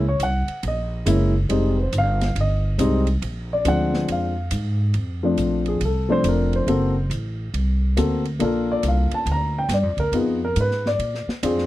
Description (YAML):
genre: jazz piano trio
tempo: 139 BPM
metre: 4/4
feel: swing 66% on 8ths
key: Bb major from 5.0 s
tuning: A4 = 440 Hz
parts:
  - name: dark upright piano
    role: melody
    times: 0.0-11.7 s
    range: F3 to Bb5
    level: -22 LUFS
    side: left 1 dB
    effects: none
  - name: upright bass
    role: bass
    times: 0.0-11.7 s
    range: F1 to Bb2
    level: -22 LUFS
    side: equal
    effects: none
  - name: open jazz drum kit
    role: drums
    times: 0.2-11.7 s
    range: hi-hat, kick drum, ride cymbal, snare drum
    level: -34 LUFS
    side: right 2 dB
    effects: none
room: little or no reverb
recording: dry, close 1970s-style studio recording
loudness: -19 LUFS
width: side -15 dB against mid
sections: 0.0-5.0 A section; 5.0-11.7 B section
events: upright piano solo 5.0-11.7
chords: 0.0 Gb; 1.5 Fm9; 3.2 Bb7; 5.0 Bbmaj9; 6.7 D7b13; 8.4 Gm9 (rootless); 10.1 Fm7b5; 11.0 Bb7